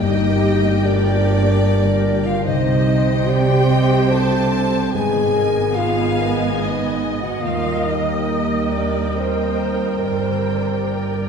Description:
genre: cinematic, emotional film score for orchestra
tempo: 71 BPM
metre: 3/4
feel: uneven beats, rubato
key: C minor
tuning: A4 = 440 Hz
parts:
  - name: clear symphonic violin section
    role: melody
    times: 0.0-11.3 s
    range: G5 to Ab5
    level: -33 LUFS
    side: left 2 dB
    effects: none
  - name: mellow French horn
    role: melody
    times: 0.0-11.3 s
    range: Bb3 to A4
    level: -24 LUFS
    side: equal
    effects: none
  - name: bright symphonic violin section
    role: second line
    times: 0.0-11.3 s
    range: Bb4 to A5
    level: -30 LUFS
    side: left 2 dB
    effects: none
  - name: mellow hollow silver concert flute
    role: second line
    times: 0.0-11.3 s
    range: Bb4 to A5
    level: -28 LUFS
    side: equal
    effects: none
  - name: warm clarinet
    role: second line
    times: 0.0-11.3 s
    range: G4 to Eb5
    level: -29 LUFS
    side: equal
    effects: none
  - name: warm symphonic viola section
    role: accompaniment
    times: 0.0-11.3 s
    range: Bb3 to Eb5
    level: -26 LUFS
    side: right 2 dB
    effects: none
  - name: mellow French horn section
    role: sustained chords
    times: 0.0-11.3 s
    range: G3 to C5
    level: -24 LUFS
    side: left 1 dB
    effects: none
  - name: concert harp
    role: arpeggios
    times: 0.0-11.3 s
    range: G2 to Eb5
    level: -26 LUFS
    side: left 4 dB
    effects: none
  - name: clear symphonic double bass section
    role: bass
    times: 0.0-11.3 s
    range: G1 to Eb2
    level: -24 LUFS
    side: right 2 dB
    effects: none
  - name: rich symphonic cello section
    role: bass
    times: 0.0-11.3 s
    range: Eb2 to C3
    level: -23 LUFS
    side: right 2 dB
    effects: none
room: wet scoring stage reverb, RT60 1.8 s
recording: heard from further back in the room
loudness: -16 LUFS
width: side -6 dB against mid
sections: 0.0-11.3 A section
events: none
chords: 0.0 Gm; 2.5 Cmadd9; 4.9 Abm; 7.4 Eb; 10.0 Gm

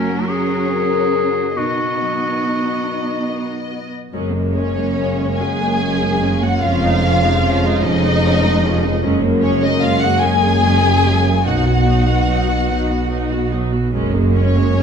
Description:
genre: cinematic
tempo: 46-50 BPM (dotted quarters)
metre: 6/8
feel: rubato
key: F# major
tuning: A4 = 437 Hz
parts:
  - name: warm studio violin section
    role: melody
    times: 0.0-14.8 s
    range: A#4 to G#5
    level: -22 LUFS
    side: left 2 dB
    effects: none
  - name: bright clarinet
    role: second line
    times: 0.0-3.7 s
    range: C#4 to G#4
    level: -21 LUFS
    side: left 1 dB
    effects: none
  - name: rich studio viola section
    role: accompaniment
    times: 0.0-14.8 s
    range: E#3 to F#4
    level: -23 LUFS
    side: right 4 dB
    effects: none
  - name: concert harp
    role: arpeggios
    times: 0.0-14.8 s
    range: E#2 to D#5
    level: -26 LUFS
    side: left 12 dB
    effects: none
  - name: dark studio cello section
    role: bass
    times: 0.0-14.8 s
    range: E#2 to D#4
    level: -22 LUFS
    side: right 3 dB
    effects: none
  - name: dark French horn section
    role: sustained chords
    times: 4.1-14.8 s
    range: G#3 to D#4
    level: -23 LUFS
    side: left 5 dB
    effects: none
  - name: dark studio double bass section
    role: bass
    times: 4.1-14.8 s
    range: E#1 to B1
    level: -19 LUFS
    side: right 2 dB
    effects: none
  - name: dark studio violin section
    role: second line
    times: 4.6-14.8 s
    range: C#4 to G#4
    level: -24 LUFS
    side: left 2 dB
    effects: none
room: light reverb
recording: close, detailed microphones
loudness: -14 LUFS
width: side -7 dB against mid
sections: 0.0-4.1 A section; 4.1-14.8 A section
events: none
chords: 0.0 F#add9; 1.6 B; 4.1 F#add9; 6.6 C#add9/E#; 9.0 F#add9; 11.5 B; 13.9 F#add9

